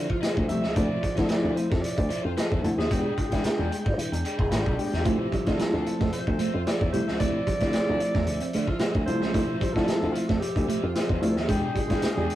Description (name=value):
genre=funk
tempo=112 BPM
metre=4/4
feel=straight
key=unclear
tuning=A4 = 440 Hz
part: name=biting overdriven guitar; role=accompaniment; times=0.0-12.3 s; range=F4 to G#5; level=-36 LUFS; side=equal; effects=none
part: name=mellow tonewheel organ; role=sustained chords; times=0.0-12.4 s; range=F3 to G5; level=-34 LUFS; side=left 1 dB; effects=slow rotary speaker
part: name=slap bass with an envelope filter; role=bass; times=0.0-12.3 s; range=E1 to E3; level=-29 LUFS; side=equal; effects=none
part: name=vintage drum kit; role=drums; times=0.1-12.4 s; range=hi-hat, kick drum, snare drum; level=-28 LUFS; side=equal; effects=none
part: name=breathy alto saxophone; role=melody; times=0.5-12.4 s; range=F4 to E5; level=-33 LUFS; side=equal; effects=none
part: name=barky reed electric piano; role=stabs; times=0.5-12.4 s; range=F3 to G#4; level=-29 LUFS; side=left 1 dB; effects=overdrive, medium tremolo
part: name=clean electric guitar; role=riff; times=5.1-12.3 s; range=G3 to C4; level=-31 LUFS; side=right 5 dB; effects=none
room=moderate booth ambience, RT60 0.3 s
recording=rough rehearsal-room recording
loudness=-23 LUFS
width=side -14 dB against mid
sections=0.0-12.4 A section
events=none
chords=0.0 Dm9; 2.9 E7#9; 5.1 Dm9; 11.5 E7#9